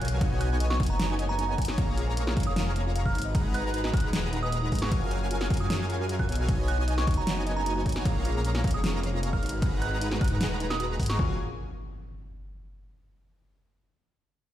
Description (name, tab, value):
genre	future bass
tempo	153 BPM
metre	4/4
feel	half-time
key	F# major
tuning	A4 = 442 Hz
part	dark chamber string section	sustained chords	0.0-11.4 s	F#3 to A#5	-40 LUFS	right 2 dB	sidechain pumping
part	airy dreamy lead	arpeggios	0.0-11.3 s	G#5 to A#5	-43 LUFS	right 1 dB	chorus, sidechain pumping, digital delay
part	thumb-piano-like synth pluck	arpeggios	0.0-11.4 s	D#4 to G#5	-39 LUFS	left 2 dB	chorus, sidechain pumping, digital delay
part	big bright polysynth	riff	0.0-11.3 s	F#3 to A#5	-35 LUFS	right 1 dB	chorus, sidechain pumping
part	wide detuned saw bass	bass	0.0-11.4 s	D#1 to G#2	-29 LUFS	equal	chorus, tube saturation, sidechain pumping
part	big-room dance drum kit	drums	0.0-11.2 s	hi-hat, ride cymbal, snare drum	-34 LUFS	equal	none
part	downlifter and impact	sound effects	0.0-1.8, 11.2-12.8 s	none	-40 LUFS	equal	none
part	electronic kick drum	drums	0.2-11.3 s	none	-28 LUFS	equal	overdrive
part	glassy synth bell	melody	0.4-11.2 s	A#5 to F#6	-36 LUFS	right 3 dB	chorus, sidechain pumping, digital delay
room	digital ambience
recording	played on a big sound system in a bare room, stone room reverb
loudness	-25 LUFS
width	side -12 dB against mid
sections	0.0-11.2 A section; 11.2-12.8 B section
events	drop 0.0-11.2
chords	0.2 B6; 1.8 A#m7; 3.2 G#m9; 4.9 F#maj9; 6.5 B6; 8.1 A#m7; 9.4 G#m9; 11.2 F#maj9